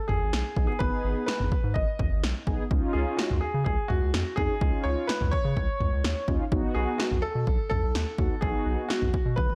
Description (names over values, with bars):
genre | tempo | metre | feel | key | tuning
synth-pop | 126 BPM | 4/4 | straight | unclear | A4 = 440 Hz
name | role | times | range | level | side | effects
warm concert grand piano | melody | 0.0-9.6 s | F#4 to D#5 | -34 LUFS | equal | digital delay
round analog bass | bass | 0.1-9.5 s | G#1 to C#3 | -31 LUFS | equal | none
punchy analog drum machine | drums | 0.1-9.6 s | kick drum, snare drum, toms | -31 LUFS | equal | gated reverb
mellow synth brass | accompaniment | 0.6-9.1 s | B3 to G#4 | -34 LUFS | equal | chorus
room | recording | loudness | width
light reverb | faint mains hum | -27 LUFS | mono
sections
0.0-9.6 A section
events
drum fill 9.4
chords
0.0 G#m; 2.7 C#add9; 6.5 B